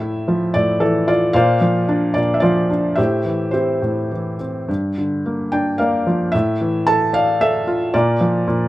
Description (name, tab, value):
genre	classical, lyrical solo piano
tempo	111 BPM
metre	3/4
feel	rubato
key	D minor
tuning	A4 = 440 Hz
part	felt-muted upright piano	solo	0.0-8.7 s	G2 to A5	-16 LUFS	equal	none
room	light reverb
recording	close, detailed microphones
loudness	-16 LUFS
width	side -16 dB against mid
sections	0.0-8.7 A section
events	none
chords	0.0 Dmadd9/A; 1.3 Bbadd9; 3.0 Am7; 4.7 Gm7; 6.3 Dmadd9/A; 7.9 Bb